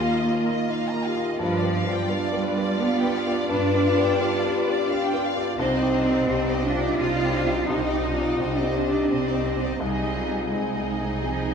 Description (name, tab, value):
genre	cinematic, emotional film score for orchestra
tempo	86 BPM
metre	3/4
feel	rubato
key	unclear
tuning	A4 = 440 Hz
part	warm studio violin section	melody	0.0-11.5 s	D5 to Eb5	-33 LUFS	left 2 dB	none
part	warm studio violin section	second line	0.0-11.5 s	Ab4 to Bb5	-32 LUFS	left 2 dB	none
part	clear grand piano	accompaniment	0.0-11.5 s	C2 to Ab4	-29 LUFS	left 1 dB	none
part	rich studio viola section	accompaniment	0.0-11.5 s	D4 to F4	-33 LUFS	right 3 dB	none
part	mellow French horn section	sustained chords	0.0-11.5 s	D4 to B4	-28 LUFS	left 4 dB	none
part	warm symphonic cello section	bass	0.0-11.5 s	F3 to F4	-26 LUFS	right 3 dB	none
part	dark studio double bass section	bass	1.4-11.5 s	C2 to G2	-31 LUFS	right 3 dB	none
room	wet concert hall reverb, RT60 2.3 s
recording	minimal, uncompressed stereo recording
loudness	-21 LUFS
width	side -6 dB against mid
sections	0.0-11.5 A section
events	none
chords	0.0 Ebsus2; 1.4 G7; 5.6 Cmadd9; 9.8 Ab/C